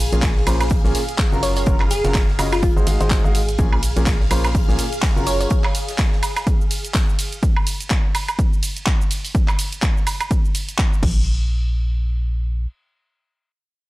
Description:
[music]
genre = piano house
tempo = 125 BPM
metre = 4/4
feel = swing 57% on 16ths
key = Bb minor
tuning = A4 = 440 Hz
[part]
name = string machine, violins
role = sustained chords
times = 0.0-7.4 s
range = Ab4 to F5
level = -29 LUFS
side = equal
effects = ensemble chorus, sidechain pumping
[part]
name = organ-like FM bass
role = bass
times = 0.0-5.5, 11.0-12.7 s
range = Gb1 to Bb1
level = -21 LUFS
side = equal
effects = sidechain pumping
[part]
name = house drum kit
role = drums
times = 0.0-11.1 s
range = crash cymbal, handclaps, hi-hat, ride cymbal, shaker, woodblock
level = -25 LUFS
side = right 2 dB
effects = none
[part]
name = clear upright piano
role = riff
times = 0.1-5.5 s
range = Bb2 to F5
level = -26 LUFS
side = equal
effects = sidechain pumping, tape echo
[part]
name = electronic kick drum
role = drums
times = 0.2-11.1 s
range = none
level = -19 LUFS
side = equal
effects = overdrive
[part]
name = gated 80s drum kit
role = drums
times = 0.2-7.3 s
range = hi-hat, snare drum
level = -37 LUFS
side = left 2 dB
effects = none
[part]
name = glassy wavetable pluck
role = melody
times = 1.4-5.5 s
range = F4 to Db5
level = -25 LUFS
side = equal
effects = chorus, tape echo
[sound]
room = little or no reverb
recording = none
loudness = -17 LUFS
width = side -19 dB against mid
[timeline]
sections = 0.0-11.3 A section; 11.3-13.9 B section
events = drop 0.0-11.3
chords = 0.0 Bbm7; 1.4 Gbmaj7; 2.6 Ab7; 3.6 Bbm7; 5.3 Gbmaj7; 6.5 Fm/Ab; 7.4 N.C.

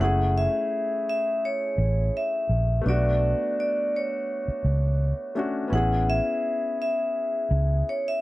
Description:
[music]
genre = soul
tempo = 84 BPM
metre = 4/4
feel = swing 54% on 16ths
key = F# minor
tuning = A4 = 440 Hz
[part]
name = vibraphone with medium hard mallets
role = melody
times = 0.0-8.2 s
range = C#5 to F#5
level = -26 LUFS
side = equal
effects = none
[part]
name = clear grand piano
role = accompaniment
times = 0.0-8.2 s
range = A3 to G#4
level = -31 LUFS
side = left 2 dB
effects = none
[part]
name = vintage muted fingered electric bass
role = bass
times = 0.0-7.8 s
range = F#1 to C#2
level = -23 LUFS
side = equal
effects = none
[sound]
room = small room reverb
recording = dry, close 1970s-style studio recording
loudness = -23 LUFS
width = side -17 dB against mid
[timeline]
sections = 0.0-8.2 A section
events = none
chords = 0.0 F#m7; 2.9 Bm9; 5.7 Amaj9

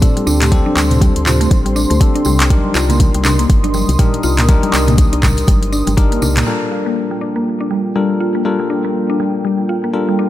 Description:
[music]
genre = afro house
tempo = 121 BPM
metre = 4/4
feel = swing 59% on 16ths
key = G minor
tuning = A4 = 440 Hz
[part]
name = dark analog pad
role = sustained chords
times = 0.0-10.3 s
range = Bb3 to Eb6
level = -24 LUFS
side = right 2 dB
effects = chorus, sidechain pumping
[part]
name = bell-like tine electric piano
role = stabs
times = 0.0-10.3 s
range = G3 to Bb4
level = -20 LUFS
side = left 4 dB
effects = sidechain pumping, low-pass filter, tape echo
[part]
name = afro-pop drum kit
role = drums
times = 0.0-6.5 s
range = handclaps, hi-hat, toms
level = -19 LUFS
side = equal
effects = none
[part]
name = electronic kick drum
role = drums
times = 0.0-6.1 s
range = none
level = -12 LUFS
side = equal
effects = none
[part]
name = tambourine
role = percussion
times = 0.0-6.5 s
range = none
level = -27 LUFS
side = right 2 dB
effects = none
[part]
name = mallet-like synth pluck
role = arpeggios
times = 0.2-10.3 s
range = G3 to F4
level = -19 LUFS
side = equal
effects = chorus, sidechain pumping, tape echo
[part]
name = congas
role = percussion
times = 0.2-6.3 s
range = none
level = -23 LUFS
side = left 1 dB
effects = none
[part]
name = woody FM bass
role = bass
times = 0.3-6.4 s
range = G1 to D2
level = -17 LUFS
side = equal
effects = sidechain pumping
[sound]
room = digital ambience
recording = none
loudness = -12 LUFS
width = side -14 dB against mid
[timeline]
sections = 0.0-6.5 A section; 6.5-10.3 B section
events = band accent 6.3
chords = 0.0 D7sus4; 2.5 Cm7; 6.5 Gm7

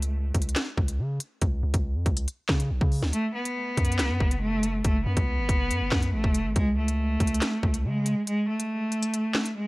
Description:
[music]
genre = hip hop, drill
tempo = 140 BPM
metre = 4/4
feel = half-time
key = F# minor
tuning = A4 = 440 Hz
[part]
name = long sustained 808-style bass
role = bass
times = 0.0-8.2 s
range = E#1 to C#3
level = -27 LUFS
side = equal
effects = none
[part]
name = drill drum kit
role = drums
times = 0.0-9.6 s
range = handclaps, hi-hat, kick drum, snare drum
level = -26 LUFS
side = equal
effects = none
[part]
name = rich cello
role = melody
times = 3.1-9.7 s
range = G#3 to B3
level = -27 LUFS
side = equal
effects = low-pass filter, analog delay
[sound]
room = digital ambience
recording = dry, gritty hardware recording, cassette tape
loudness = -24 LUFS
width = side -22 dB against mid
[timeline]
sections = 0.0-9.7 A section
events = break 0.0-3.1, 3.1-3.6, 8.3-9.7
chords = 0.0 N.C.; 3.1 F#m; 6.6 C#5

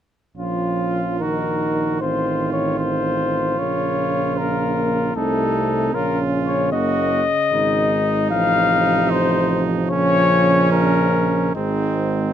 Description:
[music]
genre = classical, brass quintet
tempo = 76 BPM (dotted quarters)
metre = 6/8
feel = straight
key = Bb minor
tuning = A4 = 440 Hz
[part]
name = mellow cornet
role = melody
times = 0.4-12.3 s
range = Eb4 to F5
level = -20 LUFS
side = left 6 dB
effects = none
[part]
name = bright trumpet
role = second line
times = 0.4-12.3 s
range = C4 to Gb4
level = -26 LUFS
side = right 9 dB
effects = none
[part]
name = mellow French horn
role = accompaniment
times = 0.4-12.3 s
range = F3 to Eb4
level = -25 LUFS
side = left 2 dB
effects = none
[part]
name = mellow euphonium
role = accompaniment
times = 0.4-12.3 s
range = Ab2 to F3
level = -26 LUFS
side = right 5 dB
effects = none
[part]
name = warm tuba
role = bass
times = 0.4-12.3 s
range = Gb1 to C2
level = -24 LUFS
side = right 4 dB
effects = none
[sound]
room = light reverb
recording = close, detailed microphones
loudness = -17 LUFS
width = side -10 dB against mid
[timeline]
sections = 0.4-12.3 A section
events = none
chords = 0.4 Bbm; 1.2 Ebm/Bb; 2.0 F7/A; 3.6 Bbm; 5.2 Adim/C; 5.9 Bbm; 6.7 Gb; 7.5 Ab5; 8.3 F7/A; 9.9 Bbm; 11.6 Ab

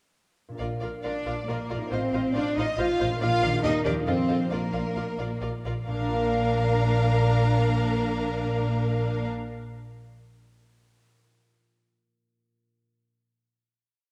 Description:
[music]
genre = cinematic, playful, whimsical film cue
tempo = 136 BPM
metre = 3/4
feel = straight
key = Bb major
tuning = A4 = 440 Hz
[part]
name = concert harp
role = arpeggios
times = 0.5-10.1 s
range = A2 to F5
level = -35 LUFS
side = equal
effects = none
[part]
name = warm studio violin section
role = second line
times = 0.6-9.3 s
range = Bb4 to F5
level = -36 LUFS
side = equal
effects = none
[part]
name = rich studio viola section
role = accompaniment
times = 0.6-9.3 s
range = D4 to C5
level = -35 LUFS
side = equal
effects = none
[part]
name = warm studio double bass section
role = bass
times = 0.6-9.3 s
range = A1 to F2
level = -31 LUFS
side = equal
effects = none
[part]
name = dark studio violin section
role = melody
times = 1.0-9.3 s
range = Bb4 to Bb5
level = -35 LUFS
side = equal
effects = none
[part]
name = rich studio cello section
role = bass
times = 1.0-9.3 s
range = Bb3 to F4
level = -32 LUFS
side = equal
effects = none
[sound]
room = wet scoring stage reverb, RT60 1.9 s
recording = dark, warm production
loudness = -26 LUFS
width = mono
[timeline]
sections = 0.6-5.9 A section; 5.9-8.5 final chord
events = none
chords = 0.6 Bb; 1.9 F7/A; 3.2 Bb; 3.6 Ebmaj7; 4.1 F7; 4.5 Bb

